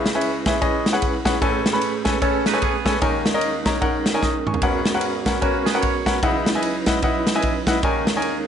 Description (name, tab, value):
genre	uptempo gospel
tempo	150 BPM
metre	4/4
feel	swing 60% on 8ths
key	unclear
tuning	A4 = 440 Hz
part	bright grand piano	accompaniment	0.0-8.5 s	G#1 to D#6	-21 LUFS	left 2 dB	none
part	mellow tonewheel organ	sustained chords	0.0-8.5 s	F#3 to B4	-26 LUFS	right 5 dB	slow rotary speaker
part	natural country drum kit	drums	0.1-8.3 s	kick drum, ride cymbal, snare drum, toms	-22 LUFS	equal	none
part	twangy electric guitar	second line	2.2-3.0, 5.4-6.2 s	A#3 to C#5	-26 LUFS	right 10 dB	none
room	moderate large studio reverb, RT60 0.8 s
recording	nothing above 10.6 kHz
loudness	-18 LUFS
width	side -8 dB against mid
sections	0.0-8.5 A section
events	drum fill 4.2-4.6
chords	0.0 C#m7; 1.4 Amaj9; 3.0 D#7sus4; 4.6 G#m11; 6.2 C#m11; 7.8 D#7sus4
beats	0.23 0.62 1.02 | 1.43 1.82 2.23 2.62 | 3.02 3.42 3.83 4.22 | 4.62 5.03 5.43 5.83 | 6.23 6.63 7.03 7.43 | 7.83 8.23